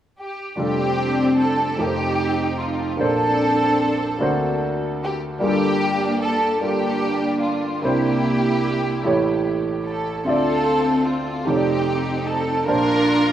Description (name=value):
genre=gospel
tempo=50 BPM (dotted quarters)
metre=6/8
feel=straight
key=F major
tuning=A4 = 441 Hz
part: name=muted studio string section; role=melody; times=0.2-13.3 s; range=Bb3 to Bb4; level=-20 LUFS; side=right 1 dB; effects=tape echo
part: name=warm grand piano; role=accompaniment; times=0.6-13.3 s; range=F1 to A5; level=-22 LUFS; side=equal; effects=none
room=light reverb, small room ambience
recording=rough home demo mix, studio ambience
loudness=-18 LUFS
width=side -11 dB against mid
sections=0.6-13.3 A section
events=none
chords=0.0 N.C.; 0.6 F69; 1.8 F7; 3.0 Bbmaj9; 4.2 D7b13; 5.4 Gm9; 7.8 C9; 9.0 A7; 10.3 Dm9; 11.5 F13; 12.7 Bbmaj9